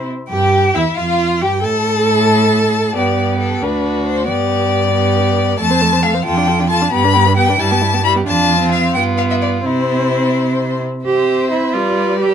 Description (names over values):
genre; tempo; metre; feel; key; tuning
quick classical-period movement for string quartet; 90 BPM (dotted quarters); 6/8; rubato; C major; A4 = 437 Hz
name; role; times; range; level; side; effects
rich violin; melody; 0.0-12.3 s; A4 to B5; -18 LUFS; left 7 dB; none
warm violin; second line; 0.0-12.3 s; E4 to C5; -21 LUFS; left 1 dB; none
rich viola; accompaniment; 0.0-12.3 s; G3 to A4; -19 LUFS; right 2 dB; none
warm cello; bass; 0.0-12.3 s; D2 to G4; -18 LUFS; right 4 dB; none
room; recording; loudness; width
light reverb; close, detailed microphones; -13 LUFS; side -8 dB against mid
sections
0.3-11.1 A section; 11.1-12.3 A section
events
none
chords
0.3 Em; 1.0 Fsus2; 1.6 N.C.; 3.0 G; 3.6 D; 4.3 G; 5.6 F; 6.3 Dm/F; 6.9 G; 7.6 Em/G; 8.3 Dm/F; 8.9 G7; 9.7 C; 11.7 G7